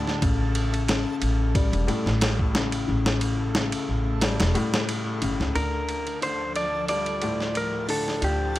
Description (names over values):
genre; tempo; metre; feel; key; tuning
trip hop; 90 BPM; 4/4; swing 54% on 16ths; D minor; A4 = 440 Hz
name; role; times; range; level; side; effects
felt-muted upright piano; arpeggios; 0.0-8.6 s; A2 to G3; -28 LUFS; left 4 dB; low-pass filter, tape echo
upright bass; bass; 0.0-8.6 s; E1 to D2; -27 LUFS; equal; none
backwards swelling texture; texture; 0.0-8.6 s; F3 to A5; -36 LUFS; right 2 dB; built-in reverb
dusty soul sampler-style drum kit; drums; 0.1-8.6 s; hi-hat, kick drum, ride cymbal, snare drum; -28 LUFS; equal; high-pass filter on kick, small room ambience, high-pass filter on cymbals, high-pass filter on snare, high-pass filter on hats
clean lap steel guitar; melody; 5.6-8.6 s; G4 to D5; -27 LUFS; equal; vintage 12-bit sampler grit, dub echo
room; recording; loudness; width
light reverb, digital ambience; none; -22 LUFS; side -15 dB against mid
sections
0.0-5.5 A section; 5.5-8.6 B section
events
none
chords
0.2 A; 5.5 Dm